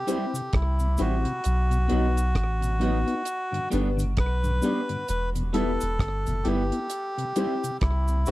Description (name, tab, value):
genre	roots reggae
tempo	66 BPM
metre	4/4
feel	swing 60% on 16ths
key	E minor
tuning	A4 = 441 Hz
part	melodica	melody	0.0-8.3 s	E4 to B4	-30 LUFS	equal	dub echo
part	electric guitar through a small old amp	accompaniment	0.1-8.3 s	F#3 to E4	-35 LUFS	right 5 dB	wide subtle chorus, dub echo
part	mellow tonewheel organ	accompaniment	0.1-8.3 s	E2 to E4	-31 LUFS	left 1 dB	slow rotary speaker, slapback echo
part	clear upright piano	stabs	0.1-8.3 s	B3 to C5	-30 LUFS	left 5 dB	none
part	deep reggae drum kit	drums	0.1-8.3 s	hi-hat, kick drum, rim click	-29 LUFS	equal	none
part	cabasa	percussion	0.1-8.3 s	none	-41 LUFS	equal	none
part	soft dub sub bass	bass	0.5-8.3 s	E1 to C2	-25 LUFS	equal	none
room	little or no reverb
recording	dry, close 1970s-style studio recording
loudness	-23 LUFS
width	side -17 dB against mid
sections	0.0-8.3 A section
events	none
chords	0.0 C; 1.4 B; 3.3 G; 5.1 Em; 6.9 C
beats	0.54 | 1.45 2.36 3.27 4.18 | 5.09 6.00 6.91 7.82